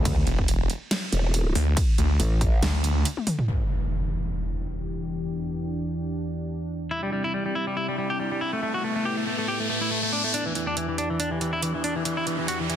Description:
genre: heavy wobble dubstep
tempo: 140 BPM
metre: 4/4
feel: swing 55% on 16ths, half-time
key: E minor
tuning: A4 = 440 Hz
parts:
  - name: growl bass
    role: bass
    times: 0.0-2.6 s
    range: E1 to D2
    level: -22 LUFS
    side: equal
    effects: chorus, overdrive
  - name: dubstep drum kit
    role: drums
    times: 0.1-3.5, 10.3-12.8 s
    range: hi-hat, ride cymbal, snare drum, toms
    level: -29 LUFS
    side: right 1 dB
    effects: high-pass filter on hats, low-pass filter on hats, high-pass filter on cymbals, low-pass filter on cymbals, high-pass filter on snare, low-pass filter on snare, high-pass filter on toms, low-pass filter on toms
  - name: electronic kick drum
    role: drums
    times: 0.1-2.5 s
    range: none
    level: -24 LUFS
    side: equal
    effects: none
  - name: snarling distorted saw bass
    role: bass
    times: 0.3-3.0 s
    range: E1 to D2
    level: -22 LUFS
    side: equal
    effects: distortion, overdrive
  - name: lush unison pad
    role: sustained chords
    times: 3.5-12.8 s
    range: E2 to G4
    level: -30 LUFS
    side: equal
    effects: chorus, sidechain pumping
  - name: impact and riser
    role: sound effects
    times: 3.5-12.8 s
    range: none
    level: -31 LUFS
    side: equal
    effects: none
  - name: semi-hollow electric guitar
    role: melody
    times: 6.9-12.8 s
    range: E3 to G4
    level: -27 LUFS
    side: left 1 dB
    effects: tape echo
room: light reverb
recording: dense, heavily limited modern master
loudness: -24 LUFS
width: side -10 dB against mid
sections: 0.0-3.5 A section; 3.5-10.3 B section; 10.3-12.8 C section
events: drop 0.0-3.5; break 3.1-3.5; drum fill 3.2-3.5; impact 3.5-5.2; filter sweep on analog synth pad 3.5-10.3; riser 7.9-10.3, 10.3-12.8; build-up 10.3-12.8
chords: 0.0 Dsus2; 3.5 Em7; 6.9 Cadd9; 8.6 Asus2; 10.3 Em7

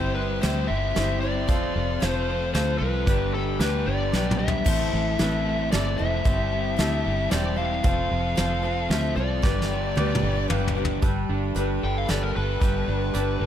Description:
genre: folk rock and heartland rock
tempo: 113 BPM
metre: 3/4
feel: straight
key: G mixolydian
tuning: A4 = 435 Hz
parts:
  - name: biting lead guitar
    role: melody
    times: 0.0-13.5 s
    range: A4 to G5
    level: -29 LUFS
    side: left 3 dB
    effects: overdrive, plate reverb
  - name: bright upright piano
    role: accompaniment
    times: 0.0-13.5 s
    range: D4 to F5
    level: -35 LUFS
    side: right 3 dB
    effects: none
  - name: picked acoustic archtop guitar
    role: accompaniment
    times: 0.0-13.5 s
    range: A2 to C5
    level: -34 LUFS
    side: left 2 dB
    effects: none
  - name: rich symphonic string section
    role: sustained chords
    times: 0.0-13.5 s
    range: G4 to D6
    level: -39 LUFS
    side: left 2 dB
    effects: none
  - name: crunchy overdriven guitar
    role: riff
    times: 0.0-13.5 s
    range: G2 to A4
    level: -30 LUFS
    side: left 1 dB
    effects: none
  - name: fingered electric bass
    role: bass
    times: 0.0-13.5 s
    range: E1 to D2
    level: -27 LUFS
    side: equal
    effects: none
  - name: soft brush drum kit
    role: drums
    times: 0.4-13.3 s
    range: crash cymbal, hi-hat, kick drum, snare drum, toms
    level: -26 LUFS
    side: equal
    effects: none
room: light reverb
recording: none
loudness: -22 LUFS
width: side -10 dB against mid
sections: 0.0-11.0 A section; 11.0-13.5 B section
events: drum fill 4.1-4.7, 9.4-11.0; lead electric guitar solo 11.0-13.5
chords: 0.0 C/G; 1.5 F; 3.1 G; 4.7 Am; 6.3 C/G; 7.8 F; 9.4 G; 11.0 Gadd9

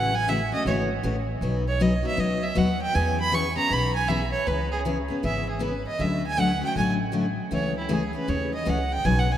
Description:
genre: acoustic string swing (jazz manouche)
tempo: 157 BPM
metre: 4/4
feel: swing 64% on 8ths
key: unclear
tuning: A4 = 440 Hz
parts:
  - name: warm violin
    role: melody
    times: 0.0-9.4 s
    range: E4 to C#6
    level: -26 LUFS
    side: right 3 dB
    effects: slapback echo
  - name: picked steel-string acoustic guitar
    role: accompaniment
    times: 0.0-9.3 s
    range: B2 to B4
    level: -26 LUFS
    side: left 3 dB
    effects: none
  - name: upright bass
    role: bass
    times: 0.0-9.4 s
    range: G#1 to E2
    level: -28 LUFS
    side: right 1 dB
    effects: none
room: wet cathedral reverb, RT60 6.0 s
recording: in a vast, echoing space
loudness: -22 LUFS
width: side -11 dB against mid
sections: 0.0-4.5 A section; 4.5-9.4 A section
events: violin solo 0.0-9.4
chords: 0.0 A6; 1.4 B; 2.9 E6; 4.5 C#m7; 6.0 Dmaj7; 7.5 Amaj7/C#

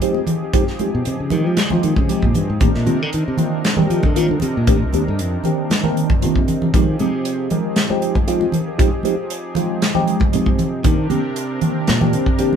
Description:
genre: electric jazz fusion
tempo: 117 BPM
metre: 4/4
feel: straight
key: F minor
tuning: A4 = 443 Hz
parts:
  - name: mellow tine electric piano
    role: accompaniment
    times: 0.0-12.6 s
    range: Eb3 to Bb4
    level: -20 LUFS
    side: right 1 dB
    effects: medium stereo tremolo, phaser
  - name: brassy analog pad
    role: sustained chords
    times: 0.0-12.6 s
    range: C3 to Bb4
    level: -27 LUFS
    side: right 1 dB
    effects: chorus
  - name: modern studio drum kit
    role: drums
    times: 0.0-12.5 s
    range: hi-hat, kick drum, snare drum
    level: -19 LUFS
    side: equal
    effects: none
  - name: congas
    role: percussion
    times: 0.1-12.6 s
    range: none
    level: -23 LUFS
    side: equal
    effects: none
  - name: modern bright fingered electric bass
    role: bass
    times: 0.9-12.6 s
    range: C2 to G3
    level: -20 LUFS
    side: equal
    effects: none
room: light reverb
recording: band playing live in one room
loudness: -16 LUFS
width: side -8 dB against mid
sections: 0.0-12.6 A section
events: fingered electric bass solo 0.0-12.6; drum fill 6.2-6.7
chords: 0.0 Fm9; 2.6 Cm9; 6.7 Fm9; 10.8 Cm9

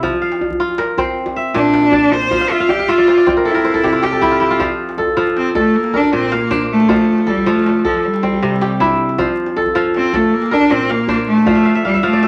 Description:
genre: west african traditional, West African string and xylophone music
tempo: 105 BPM (dotted quarters)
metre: 12/8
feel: straight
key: F major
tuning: A4 = 440 Hz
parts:
  - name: kora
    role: arpeggios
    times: 0.0-12.3 s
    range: Bb2 to A5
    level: -18 LUFS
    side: equal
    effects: none
  - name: djembe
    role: percussion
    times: 0.0-12.3 s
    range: none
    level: -28 LUFS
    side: equal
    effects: none
  - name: rich cello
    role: melody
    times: 1.5-12.3 s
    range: F3 to C5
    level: -17 LUFS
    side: equal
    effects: none
room: moderate studio reverb, RT60 0.5 s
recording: vinyl crackle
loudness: -15 LUFS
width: mono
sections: 0.0-4.6 A section; 4.6-12.3 B section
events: cello solo 0.0-4.6; kora fill 2.4-4.6, 11.5-12.3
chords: 0.0 F5; 1.2 Bb; 2.3 F; 3.5 C; 4.6 F; 5.7 Bb; 6.9 F; 8.0 C; 9.2 F; 10.3 Bb; 11.5 F

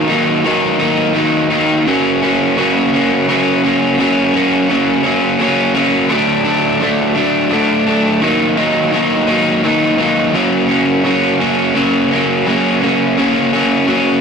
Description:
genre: rock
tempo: 57 BPM (dotted quarters)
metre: 6/8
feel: straight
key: F# major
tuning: A4 = 440 Hz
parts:
  - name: overdriven electric guitar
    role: solo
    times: 0.0-14.2 s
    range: F#2 to D#4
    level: -11 LUFS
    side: equal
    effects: none
room: moderate studio reverb, RT60 0.6 s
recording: rough rehearsal-room recording, tube saturation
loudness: -11 LUFS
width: side -6 dB against mid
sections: 0.0-10.3 A section; 10.3-14.2 B section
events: none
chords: 0.0 D#m; 1.9 F#; 6.1 D; 8.2 D#m; 10.3 F#

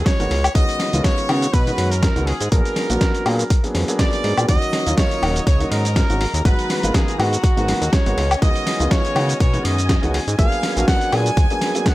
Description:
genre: nu-disco, nu disco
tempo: 122 BPM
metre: 4/4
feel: swing 54% on 16ths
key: unclear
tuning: A4 = 439 Hz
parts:
  - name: clear trumpet section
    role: melody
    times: 0.0-11.9 s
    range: Gb4 to Ab5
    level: -24 LUFS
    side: right 1 dB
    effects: tape echo
  - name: fat analog bass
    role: bass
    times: 0.0-11.5 s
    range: Eb1 to Db3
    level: -21 LUFS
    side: equal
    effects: none
  - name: dusty soul sampler-style drum kit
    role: drums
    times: 0.1-11.9 s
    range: hi-hat, shaker, snare drum, woodblock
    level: -23 LUFS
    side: left 1 dB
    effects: overdrive
  - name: electronic kick drum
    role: drums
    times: 0.1-11.9 s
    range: none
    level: -18 LUFS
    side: equal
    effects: none
  - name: dark baby grand piano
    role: accompaniment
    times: 0.2-11.9 s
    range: Eb3 to Ab4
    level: -24 LUFS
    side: equal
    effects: sidechain pumping
  - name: dark chamber string section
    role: sustained chords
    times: 4.5-11.9 s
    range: Gb3 to Bb5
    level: -32 LUFS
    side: left 1 dB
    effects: sidechain pumping
room: digital ambience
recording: none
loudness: -16 LUFS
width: side -17 dB against mid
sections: 0.0-11.9 A section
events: none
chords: 0.3 Db9sus4; 2.5 Bb7b9b13; 4.5 Ebm7; 6.2 Abm9; 8.2 Db9sus4; 10.4 Bb7b9b13

